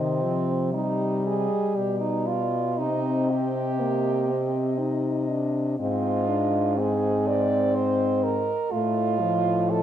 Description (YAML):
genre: classical, lyrical piece for horn quartet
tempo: 60 BPM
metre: 3/4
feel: rubato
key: unclear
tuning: A4 = 440 Hz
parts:
  - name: mellow French horn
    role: melody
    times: 0.0-9.8 s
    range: D5 to Eb5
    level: -33 LUFS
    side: left 5 dB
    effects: none
  - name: clear French horn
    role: second line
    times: 0.0-9.8 s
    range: C4 to D5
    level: -26 LUFS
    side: right 5 dB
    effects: none
  - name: mellow French horn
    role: accompaniment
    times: 0.0-9.8 s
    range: Eb3 to Eb4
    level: -27 LUFS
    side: left 4 dB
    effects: none
  - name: mellow French horn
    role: bass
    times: 0.0-9.8 s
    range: Ab2 to C3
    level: -28 LUFS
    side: equal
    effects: none
room: moderate recital hall reverb, RT60 1.4 s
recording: dark, warm production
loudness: -22 LUFS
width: side -10 dB against mid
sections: 0.0-9.8 A section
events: none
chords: 0.0 Cm; 1.8 G/B; 2.8 Cm; 5.8 Fm7/Ab; 8.7 F7/A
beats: 0.74 1.77 | 2.79 3.79 4.79 | 5.79 6.78 7.74 | 8.73 9.73